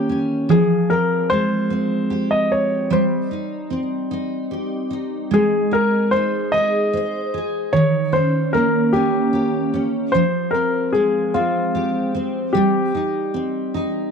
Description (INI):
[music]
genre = pop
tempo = 50 BPM (dotted quarters)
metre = 6/8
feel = straight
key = F minor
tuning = A4 = 440 Hz
[part]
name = clear baby grand piano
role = melody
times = 0.0-14.1 s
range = F4 to Eb5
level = -20 LUFS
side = left 2 dB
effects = none
[part]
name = picked steel-string acoustic guitar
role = accompaniment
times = 0.0-14.1 s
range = Eb3 to C5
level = -20 LUFS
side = right 1 dB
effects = double-tracked left and right
[sound]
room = light reverb, small room ambience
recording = dry, close 1970s-style studio recording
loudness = -17 LUFS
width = side -6 dB against mid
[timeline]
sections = 0.0-14.1 A section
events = none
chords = 0.5 Fmadd9; 2.9 Cm/G; 5.3 Ab; 7.7 Eb7; 10.1 Fmadd9; 12.5 Cm/G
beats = | 0.50 1.70 | 2.91 4.11 | 5.32 6.52 | 7.73 8.93 | 10.14 11.34 | 12.55 13.75